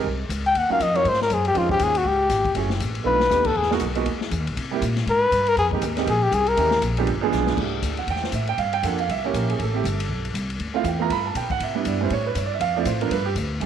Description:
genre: jazz, small-group swing and bop.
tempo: 239 BPM.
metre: 4/4.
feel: swing 59% on 8ths.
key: C major from 7.6 s.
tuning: A4 = 440 Hz.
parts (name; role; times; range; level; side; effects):
warm grand piano; accompaniment; 0.0-13.7 s; Fb3 to B5; -25 LUFS; right 10 dB; none.
upright bass; bass; 0.0-13.7 s; Gb1 to C3; -26 LUFS; left 1 dB; none.
open jazz drum kit; drums; 0.0-13.7 s; crash cymbal, hi-hat, kick drum, ride cymbal, snare drum; -30 LUFS; left 5 dB; none.
trumpet with bucket mute; melody; 0.5-6.8 s; F4 to G5; -20 LUFS; left 3 dB; none.
room: moderate plate reverb, RT60 2.0 s.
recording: 1960s-style stereo.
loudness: -20 LUFS.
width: side -9 dB against mid.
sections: 0.0-7.6 A section; 7.6-13.7 A section.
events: muted trumpet solo 0.0-7.6; drum fill 3.1, 7.3.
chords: 0.0 N.C.; 0.5 Ebm9; 1.1 Gbadd9; 1.6 Dbmaj9; 2.6 Gbm9; 3.1 B7alt; 3.6 Emaj9#11; 4.6 C7(no3); 5.6 Fm11; 6.6 Eb7b9; 7.1 G7b9; 7.6 C69; 8.6 Gm9; 9.1 C7b9; 9.6 Gadd9; 10.6 Dm9; 11.1 G; 11.6 Cmaj9; 12.1 G69; 12.6 Dm7; 13.1 G5.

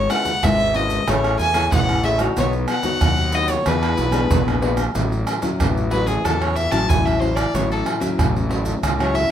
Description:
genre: samba and choro.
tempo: 93 BPM.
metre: 4/4.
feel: straight.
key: E major, A major from 5.0 s.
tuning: A4 = 439 Hz.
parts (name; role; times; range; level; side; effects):
rich violin; melody; 0.0-9.3 s; G#4 to A5; -22 LUFS; equal; none.
nylon-string guitar; accompaniment; 0.0-9.3 s; A2 to C#5; -24 LUFS; left 4 dB; none.
fuzz fingered electric bass; bass; 0.0-9.2 s; G#1 to E2; -23 LUFS; equal; overdrive.
maracas, pandeiro, tamborim and surdo; percussion; 0.1-9.3 s; none; -22 LUFS; right 2 dB; none.
room: moderate studio reverb, RT60 0.7 s.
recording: none.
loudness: -17 LUFS.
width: side -10 dB against mid.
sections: 0.0-5.0 A section; 5.0-9.3 B section.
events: violin solo 5.0-9.3.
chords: 0.0 C#m7/G#; 1.1 Amaj7; 2.4 Badd9; 3.7 E7; 5.0 A6.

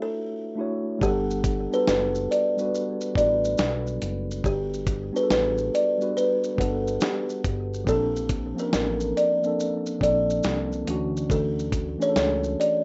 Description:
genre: lo-fi hip hop.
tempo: 70 BPM.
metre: 4/4.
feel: swing 65% on 16ths.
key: G major.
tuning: A4 = 443 Hz.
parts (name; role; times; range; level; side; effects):
buzzing kalimba; melody; 0.0-12.8 s; G4 to D5; -28 LUFS; equal; low-pass filter.
mellow tine electric piano; accompaniment; 0.0-12.8 s; E3 to F#5; -31 LUFS; equal; cassette tape, low-pass filter.
fat analog bass; bass; 1.0-12.6 s; F#1 to D2; -33 LUFS; equal; none.
dusty soul sampler-style drum kit; drums; 1.0-12.8 s; hi-hat, kick drum, shaker, snare drum; -30 LUFS; equal; vintage 12-bit sampler grit.
room: light reverb.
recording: rough home demo mix, nothing above 7.9 kHz.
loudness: -25 LUFS.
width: mono.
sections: 0.0-1.0 A section; 1.0-12.8 B section.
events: break 0.0-1.0.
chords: 0.0 Dmaj9; 1.0 Gmaj9; 7.9 Bbmaj9; 10.9 Dmaj9.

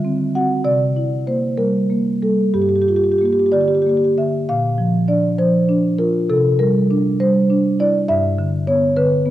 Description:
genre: classical, contemporary piece for solo marimba.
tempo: 60-70 BPM (dotted quarters).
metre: 6/8.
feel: rubato.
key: G dorian, Bb major from 4.5 s.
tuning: A4 = 440 Hz.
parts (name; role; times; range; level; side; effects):
marimba with soft mallets; solo; 0.0-9.3 s; G2 to F#5; -15 LUFS; equal; none.
room: moderate scoring stage reverb, RT60 1.6 s.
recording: dark, warm production.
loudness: -15 LUFS.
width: side -13 dB against mid.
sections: 0.0-4.5 A section; 4.5-9.3 B section.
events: none.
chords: 0.0 D9; 0.6 C9; 2.5 Gm7; 4.5 Bb; 6.3 Cadd9; 8.1 G6.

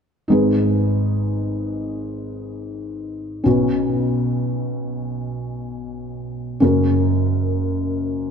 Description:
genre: pop.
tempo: free time.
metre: none.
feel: none.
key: unclear.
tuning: A4 = 440 Hz.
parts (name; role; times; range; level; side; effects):
felt-muted upright piano; accompaniment; 0.3-8.3 s; F#1 to B4; -19 LUFS; equal; none.
room: moderate concert hall reverb, RT60 2.0 s.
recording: dark, warm production.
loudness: -18 LUFS.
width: side -6 dB against mid.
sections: 0.3-8.3 A section.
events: none.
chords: 0.3 G#m; 3.5 Bsus2; 6.6 F#.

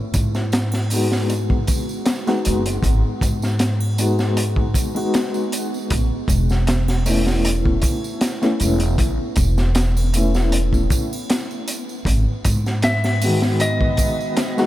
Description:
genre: trip hop.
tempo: 78 BPM.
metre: 4/4.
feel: straight.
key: G# phrygian.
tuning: A4 = 444 Hz.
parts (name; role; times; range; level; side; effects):
upright bass; bass; 0.1-14.0 s; E1 to G#2; -20 LUFS; equal; none.
crunchy breakbeat drum kit; drums; 0.1-14.7 s; hi-hat, kick drum, snare drum; -22 LUFS; equal; none.
tambourine and triangle; percussion; 0.1-14.7 s; none; -33 LUFS; right 5 dB; none.
felt-muted upright piano; accompaniment; 0.9-14.7 s; D#3 to F#4; -23 LUFS; left 1 dB; tremolo, tape echo.
bowed-like drone; texture; 12.6-14.7 s; B3; -32 LUFS; left 2 dB; built-in reverb.
semi-hollow electric guitar; melody; 12.8-14.7 s; D#5 to E5; -23 LUFS; equal; tape echo.
room: moderate huge ambient reverb, RT60 8.5 s.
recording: dreamy mix soaked in reverb.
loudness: -17 LUFS.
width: side -14 dB against mid.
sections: 0.0-14.7 A section.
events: none.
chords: 0.0 G#m7; 5.9 Aadd9; 12.1 G#m7.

